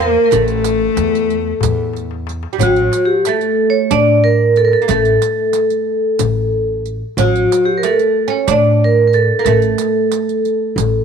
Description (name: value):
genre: Turkish makam ensemble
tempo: 184 BPM (eighths)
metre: 7/8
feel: straight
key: A makam hicaz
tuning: A4 = 440 Hz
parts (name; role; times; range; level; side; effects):
- vibraphone with medium hard mallets; melody; 0.0-11.0 s; F#4-40c to D5; -14 LUFS; equal; none
- clear cello; second line; 0.0-1.9 s; A3 to Bb3; -20 LUFS; left 11 dB; none
- oud; second line; 0.0-11.0 s; F#3-40c to D4; -21 LUFS; right 14 dB; none
- upright bass; bass; 0.0-11.0 s; A1 to A2; -19 LUFS; equal; none
- darbuka; percussion; 0.3-10.9 s; none; -22 LUFS; left 7 dB; none
- riq; percussion; 0.3-10.9 s; none; -25 LUFS; right 16 dB; none
room: light reverb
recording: 1960s-style stereo with parts hard left and right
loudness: -12 LUFS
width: side -6 dB against mid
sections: 0.0-2.6 A section; 2.6-11.0 B section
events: drum fill 2.0-2.6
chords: none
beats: | 0.32 0.65 0.97 1.30 1.62 1.95 2.28 | 2.60 2.93 3.26 3.58 3.91 4.24 4.56 | 4.89 5.22 5.54 5.87 6.20 6.52 6.85 | 7.18 7.50 7.83 8.16 8.48 8.81 9.14 | 9.46 9.79 10.12 10.45 10.77